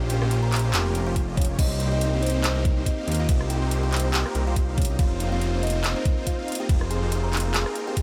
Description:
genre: future bass.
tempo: 141 BPM.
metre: 4/4.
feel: swing 56% on 16ths, half-time.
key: unclear.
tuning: A4 = 440 Hz.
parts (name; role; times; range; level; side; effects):
kalimba; melody; 0.0-8.0 s; Bb3 to Bb5; -33 LUFS; equal; sidechain pumping, digital delay.
supersaw chords; riff; 0.0-8.0 s; Bb3 to F5; -34 LUFS; equal; phaser, cassette tape, sidechain pumping.
fat analog bass; bass; 0.0-7.6 s; F1 to Eb2; -27 LUFS; equal; sidechain pumping.
trap drum kit; drums; 0.1-8.0 s; crash cymbal, handclaps, hi-hat, rim click; -32 LUFS; equal; small room reverb.
electronic kick drum; drums; 1.2-8.0 s; none; -25 LUFS; equal; small room reverb.
room: little or no reverb.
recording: none.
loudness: -24 LUFS.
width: mono.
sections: 0.0-1.6 A section; 1.6-8.0 A section.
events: drop 0.0-1.6, 1.6-8.0.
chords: 0.0 Bbm69; 1.6 Cm7; 5.0 F7sus4.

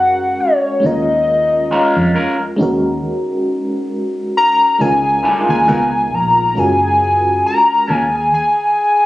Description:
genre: R&B.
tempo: 68 BPM.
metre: 4/4.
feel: swing 55% on 16ths.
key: unclear.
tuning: A4 = 441 Hz.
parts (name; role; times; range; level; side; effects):
hollow square lead; melody; 0.0-9.1 s; Db5 to Bb5; -13 LUFS; left 1 dB; chorus.
FM electric piano with tremolo; accompaniment; 0.0-7.9 s; Ab3 to Bb4; -19 LUFS; equal; none.
vintage muted fingered electric bass; bass; 0.0-8.3 s; Gb1 to F2; -21 LUFS; equal; none.
electric guitar at the edge of break-up; second line; 1.7-8.1 s; Ab3 to Bb4; -17 LUFS; equal; wah.
room: light reverb.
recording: recorded on a phone in the room, club reverb.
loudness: -12 LUFS.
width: side -16 dB against mid.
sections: 0.0-9.1 A section.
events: none.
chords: 0.0 Gbadd9; 0.8 Eb9sus4; 2.6 Ab9sus4/Eb; 4.8 Db69; 5.7 Db13; 6.6 Gbmaj9; 7.9 Ebsus4.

